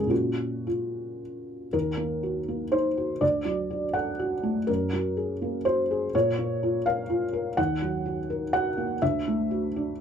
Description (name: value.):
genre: neoclassical minimalist piano.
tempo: 123 BPM.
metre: 3/4.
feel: rubato.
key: Eb dorian.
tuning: A4 = 442 Hz.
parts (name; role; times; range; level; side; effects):
felt-muted upright piano; solo; 0.0-10.0 s; D2 to F#5; -25 LUFS; equal; none.
room: wet booth ambience, RT60 0.3 s.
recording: heard from further back in the room.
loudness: -25 LUFS.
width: side -8 dB against mid.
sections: 0.0-1.7 A section; 1.7-10.0 B section.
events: none.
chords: 0.1 Bbm; 1.7 Ebm; 3.2 D; 4.7 Gbadd9; 6.1 Bbm; 7.6 Ebm; 9.0 D.